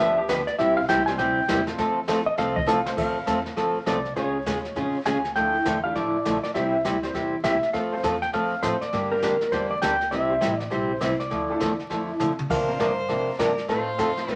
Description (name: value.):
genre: country, western swing.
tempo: 202 BPM.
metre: 4/4.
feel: swing 62% on 8ths.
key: F major.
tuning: A4 = 440 Hz.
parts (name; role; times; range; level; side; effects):
clean lap steel guitar; melody; 0.0-14.4 s; G4 to Ab5; -28 LUFS; equal; none.
picked old ladder-braced acoustic guitar; accompaniment; 0.0-14.4 s; C3 to Bb4; -27 LUFS; equal; none.
upright bass; bass; 0.0-14.4 s; A1 to C3; -41 LUFS; equal; none.
jazz brush drum kit; drums; 0.3-14.4 s; brushed snare drum, crash cymbal, hi-hat, kick drum, snare drum, toms; -36 LUFS; equal; none.
honky-tonk upright piano; accompaniment; 1.1-14.4 s; G3 to Db5; -37 LUFS; equal; none.
clear fiddle; second line; 12.5-14.4 s; F4 to C5; -33 LUFS; equal; none.
room: wet studio reverb, RT60 0.6 s.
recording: vinyl crackle.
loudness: -24 LUFS.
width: mono.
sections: 0.0-3.0 A section; 3.0-14.4 B section.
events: electric slide guitar solo 0.0-3.0; drum fill 2.7, 12.2.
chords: 0.0 G7; 0.6 C; 1.8 F; 4.2 Db; 5.4 Dmadd9; 6.5 C; 7.7 F; 8.9 Gm; 10.1 C; 11.3 Dmadd9; 12.5 Bbadd9; 13.7 F7.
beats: 0.29 | 0.59 0.89 1.18 1.48 | 1.78 2.08 2.37 2.67 | 2.97 3.27 3.57 3.86 | 4.16 4.46 4.76 5.06 | 5.35 5.65 5.95 6.25 | 6.54 6.84 7.14 7.44 | 7.74 8.03 8.33 8.63 | 8.93 9.22 9.52 9.82 | 10.12 10.41 10.71 11.01 | 11.31 11.60 11.90 12.20 | 12.50 12.79 13.09 13.39 | 13.69 13.98 14.28.